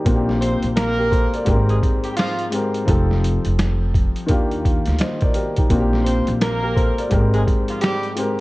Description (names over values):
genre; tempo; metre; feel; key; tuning
hip hop, boom-bap hip-hop; 85 BPM; 4/4; swing 62% on 16ths; Bb major; A4 = 439 Hz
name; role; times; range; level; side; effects
dark upright piano; accompaniment; 0.0-8.4 s; Ab2 to Eb5; -22 LUFS; left 1 dB; high-pass filter, low-pass filter
upright bass; bass; 0.1-7.4 s; F1 to Eb2; -20 LUFS; equal; none
boom bap sampler-style drum kit; drums; 0.1-8.4 s; hi-hat, kick drum, snare drum; -20 LUFS; equal; none
warm horn section; stabs; 0.4-8.1 s; F3 to C5; -24 LUFS; right 1 dB; high-pass filter, low-pass filter, slapback echo
room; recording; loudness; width
light reverb, small room ambience; worn, warbling old tape, cassette tape, warbly pitch drift; -16 LUFS; side -20 dB against mid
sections
0.0-8.4 A section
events
none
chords
0.1 Bb69; 1.5 Abmaj7; 2.9 F7; 4.3 Ebmaj9; 5.7 Bb69; 7.1 Abmaj7